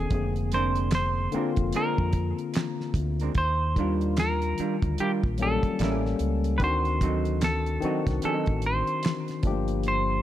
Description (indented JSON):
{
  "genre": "R&B, neo-soul",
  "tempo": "74 BPM",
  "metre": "4/4",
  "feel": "swing 61% on 16ths",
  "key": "Eb major",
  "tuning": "A4 = 440 Hz",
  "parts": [
    { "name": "semi-hollow electric guitar", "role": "melody", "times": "0.0-10.2 s", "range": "G4 to C5", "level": "-30 LUFS", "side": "right 1 dB", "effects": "vibrato effect" },
    { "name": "barky tine electric piano", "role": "accompaniment", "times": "0.0-10.2 s", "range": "D3 to A4", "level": "-30 LUFS", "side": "left 6 dB", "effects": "overdrive" },
    { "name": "deep dub fingered electric bass", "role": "bass", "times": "0.0-10.2 s", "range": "F1 to F2", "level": "-28 LUFS", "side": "right 1 dB", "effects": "none" },
    { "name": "damped 70s drum kit", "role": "drums", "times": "0.1-10.1 s", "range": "handclaps, hi-hat, kick drum, snare drum", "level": "-28 LUFS", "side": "right 1 dB", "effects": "none" },
    { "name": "hollow-body jazz guitar", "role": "second line", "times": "0.5-8.5 s", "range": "F#3 to Bb4", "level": "-33 LUFS", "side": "right 8 dB", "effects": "none" }
  ],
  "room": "light reverb, studio ambience",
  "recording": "dark, warm production",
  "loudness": "-24 LUFS",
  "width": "side -12 dB against mid",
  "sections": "0.0-10.2 A section",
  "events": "none",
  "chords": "0.1 Bb9/F; 3.4 Ebmaj9; 5.8 A7b9; 6.6 D7b9; 9.4 Gm7",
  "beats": "| 0.11 0.92 1.73 2.54 | 3.35 4.16 4.97 5.79 | 6.60 7.41 8.22 9.03 | 9.84"
}